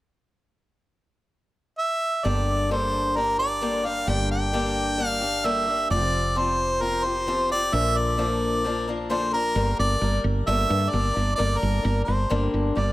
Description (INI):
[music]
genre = folk rock and heartland rock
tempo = 131 BPM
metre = 4/4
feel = straight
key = G dorian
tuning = A4 = 440 Hz
[part]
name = clear harmonica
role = melody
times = 1.8-12.9 s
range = Bb4 to G5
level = -24 LUFS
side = equal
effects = analog delay
[part]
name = picked swing-style acoustic guitar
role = accompaniment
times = 2.2-12.9 s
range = G2 to Bb4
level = -28 LUFS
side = left 3 dB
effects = none
[part]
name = woody fretless electric bass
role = bass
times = 2.3-12.9 s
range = F1 to G2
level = -26 LUFS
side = equal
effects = analog chorus
[sound]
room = light reverb, small room reverb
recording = none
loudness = -21 LUFS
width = side -16 dB against mid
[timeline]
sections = 0.4-2.2 A section; 2.2-9.6 B section; 9.6-12.9 C section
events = none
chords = 0.4 N.C.; 2.2 Gm; 5.9 Fsus2; 7.7 Bb; 9.6 Gm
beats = | 0.42 0.88 1.34 1.79 | 2.25 2.71 3.16 3.62 | 4.08 4.53 4.99 5.45 | 5.91 6.36 6.82 7.28 | 7.73 8.19 8.65 9.10 | 9.56 10.02 10.47 10.93 | 11.39 11.85 12.30 12.76